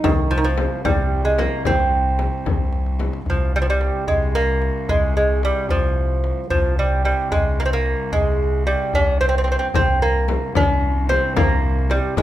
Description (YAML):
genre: Persian modal ensemble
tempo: 74 BPM (dotted quarters)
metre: 6/8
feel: straight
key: C dastgah shur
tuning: A4 = 441 Hz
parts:
  - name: lute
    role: melody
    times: 0.0-12.2 s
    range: Eb3 to Db4+45c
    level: -20 LUFS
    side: right 2 dB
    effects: none
  - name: pure sine sub bass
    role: bass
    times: 0.0-12.2 s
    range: C2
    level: -22 LUFS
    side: equal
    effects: none
  - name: rich cello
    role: drone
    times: 0.0-12.2 s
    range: C2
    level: -29 LUFS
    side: left 1 dB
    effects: none
  - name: frame drum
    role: percussion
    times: 0.0-3.1, 9.7-12.2 s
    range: none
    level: -25 LUFS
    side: left 5 dB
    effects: none
  - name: tombak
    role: percussion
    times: 0.0-12.2 s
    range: none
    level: -26 LUFS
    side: left 2 dB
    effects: none
room: moderate recital hall reverb, RT60 1.5 s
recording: minimal, uncompressed stereo recording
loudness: -17 LUFS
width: side -13 dB against mid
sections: 0.0-3.3 A section; 3.3-12.2 A section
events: drum fill 2.7-3.3, 9.2-9.7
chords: none